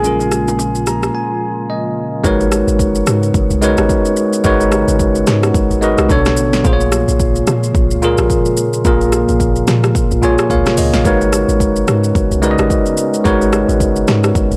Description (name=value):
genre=amapiano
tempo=109 BPM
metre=4/4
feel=swing 58% on 16ths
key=G# dorian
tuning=A4 = 443 Hz
part: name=warm baby grand piano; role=melody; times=0.0-1.5 s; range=G#4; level=-24 LUFS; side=equal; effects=tape echo
part: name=bell-like tine electric piano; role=accompaniment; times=0.0-14.6 s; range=A#2 to A#5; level=-17 LUFS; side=equal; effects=none
part: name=glassy FM pad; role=sustained chords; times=0.0-14.6 s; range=C#3 to F#4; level=-27 LUFS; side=equal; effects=ensemble chorus, built-in reverb, sidechain pumping
part: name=plucky analog bass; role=bass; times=0.0-1.1 s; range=A#1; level=-27 LUFS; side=equal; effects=none
part: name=deep house drum kit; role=drums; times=0.0-14.6 s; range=hi-hat, kick drum, rim click, shaker, snare drum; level=-20 LUFS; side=equal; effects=overdrive
part: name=congas and bongos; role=percussion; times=0.0-0.7 s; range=none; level=-30 LUFS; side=equal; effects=none
part: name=deep log drum bass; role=bass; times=2.2-14.6 s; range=G#1 to A#2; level=-20 LUFS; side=equal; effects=none
room=little or no reverb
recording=dry, gritty hardware recording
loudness=-14 LUFS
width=mono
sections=0.0-2.2 A section; 2.2-14.6 B section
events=tine electric piano fill 0.6-2.2, 9.9-11.1; break 1.1-2.2; drop 2.2-14.6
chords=0.0 A#m7; 2.2 G#m11; 6.1 Bm7; 6.6 A#m7; 11.1 G#m11